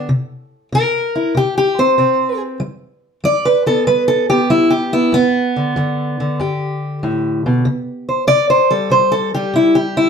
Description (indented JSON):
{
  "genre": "acoustic country blues, solo or duo",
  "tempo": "95 BPM",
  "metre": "4/4",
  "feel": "swing 68% on 8ths",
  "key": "G major",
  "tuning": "A4 = 439 Hz",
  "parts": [
    { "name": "fingerpicked acoustic archtop guitar", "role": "solo", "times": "0.0-10.1 s", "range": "G2 to D5", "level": "-13 LUFS", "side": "equal", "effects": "none" }
  ],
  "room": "wet studio reverb, RT60 0.7 s",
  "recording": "heard from further back in the room",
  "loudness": "-13 LUFS",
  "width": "side -6 dB against mid",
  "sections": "0.0-10.1 A section",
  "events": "steel-string acoustic guitar solo 0.0-10.1",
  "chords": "0.1 C7(no3); 2.6 G; 7.7 C"
}